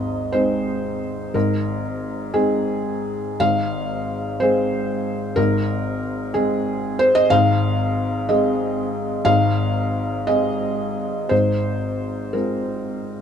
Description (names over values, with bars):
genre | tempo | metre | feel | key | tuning
neoclassical minimalist piano | 51-63 BPM (dotted quarters) | 6/8 | rubato | unclear | A4 = 437 Hz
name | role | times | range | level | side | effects
felt-muted upright piano | solo | 0.0-13.2 s | Ab1 to F5 | -19 LUFS | equal | none
room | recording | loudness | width
light reverb | minimal, uncompressed stereo recording | -19 LUFS | side -8 dB against mid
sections
0.0-13.2 A section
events
none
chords
0.0 Ab; 3.4 Fm/Ab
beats
0.32 | 1.34 2.33 | 3.40 4.40 | 5.37 6.34 | 7.31 8.29 | 9.27 10.29 | 11.31 12.36